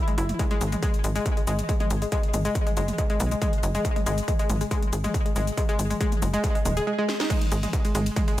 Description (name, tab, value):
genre	driving peak-time techno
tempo	139 BPM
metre	4/4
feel	straight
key	G# minor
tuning	A4 = 441 Hz
part	analog pluck	riff	0.1-8.3 s	G#3 to G#4	-28 LUFS	left 1 dB	chorus, tube saturation, sidechain pumping, tape echo
part	techno drum kit	drums	0.1-8.4 s	crash cymbal, hi-hat, ride cymbal, shaker, snare drum, toms	-33 LUFS	equal	sidechain pumping on hats, sidechain pumping on toms, sidechain pumping on perc, sidechain pumping on cymbals, tape echo
part	tight sequencer bass	bass	0.2-8.4 s	D#1 to B1	-26 LUFS	equal	tube saturation, sidechain pumping
part	electronic kick drum	drums	0.4-8.3 s	none	-25 LUFS	equal	distortion
room	light reverb, digital ambience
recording	echo-heavy mix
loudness	-22 LUFS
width	side -14 dB against mid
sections	0.0-7.3 A section; 7.3-8.4 B section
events	drum fill 7.1; drop 7.3-8.4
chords	none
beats	| 0.39 0.83 1.26 1.69 | 2.12 2.55 2.98 3.42 | 3.85 4.28 4.71 5.14 | 5.57 6.01 6.44 6.87 | 7.30 7.73 8.16